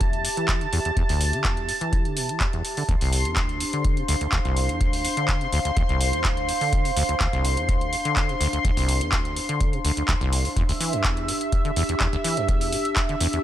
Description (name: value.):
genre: acid house.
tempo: 125 BPM.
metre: 4/4.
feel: straight.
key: unclear.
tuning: A4 = 442 Hz.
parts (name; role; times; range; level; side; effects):
lush unison pad; sustained chords; 0.0-13.4 s; E5 to C6; -29 LUFS; left 1 dB; chorus, sidechain pumping.
acid bass, saw; riff; 0.0-13.4 s; C2 to E3; -26 LUFS; equal; wide subtle chorus, vintage 12-bit sampler grit, digital delay.
electro analog drum machine; drums; 0.0-13.4 s; handclaps, hi-hat; -28 LUFS; equal; studio reverb.
electronic kick drum; drums; 0.0-13.1 s; none; -25 LUFS; equal; studio reverb.
warbly tape-like pad; texture; 0.0-13.4 s; D4 to F5; -30 LUFS; right 1 dB; chorus, built-in reverb, sidechain pumping.
room: light reverb.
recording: none.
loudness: -21 LUFS.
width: side -12 dB against mid.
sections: 0.0-13.4 A section.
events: none.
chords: 0.0 Em7; 2.9 Dm7; 10.6 Em7.